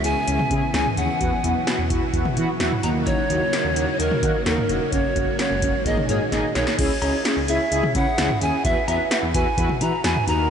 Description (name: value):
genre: synth-pop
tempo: 129 BPM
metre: 4/4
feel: straight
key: C# dorian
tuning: A4 = 440 Hz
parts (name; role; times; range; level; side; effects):
- polished pan flute; melody; 0.0-10.5 s; A#4 to A#5; -24 LUFS; right 1 dB; analog delay
- mellow synth brass; accompaniment; 0.0-10.5 s; A#3 to B4; -25 LUFS; equal; chorus
- string machine, full ensemble; sustained chords; 0.0-6.8 s; A#2 to G#4; -30 LUFS; equal; ensemble chorus
- smooth gliding synth bass; bass; 0.0-10.5 s; E1 to E3; -27 LUFS; equal; none
- electro analog drum machine; drums; 0.0-10.4 s; cowbell, crash cymbal, hi-hat, kick drum, snare drum, toms; -25 LUFS; equal; none
room: wet huge ambient reverb, RT60 7.5 s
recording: dreamy mix soaked in reverb, nothing above 10.5 kHz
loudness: -19 LUFS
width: side -8 dB against mid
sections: 0.0-6.8 A section; 6.8-10.5 B section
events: drum fill 6.3-6.8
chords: 0.0 C#m7; 1.2 Esus2; 2.8 D#m7; 4.9 F#add9; 5.9 G#sus2; 6.8 C#m; 8.6 Esus2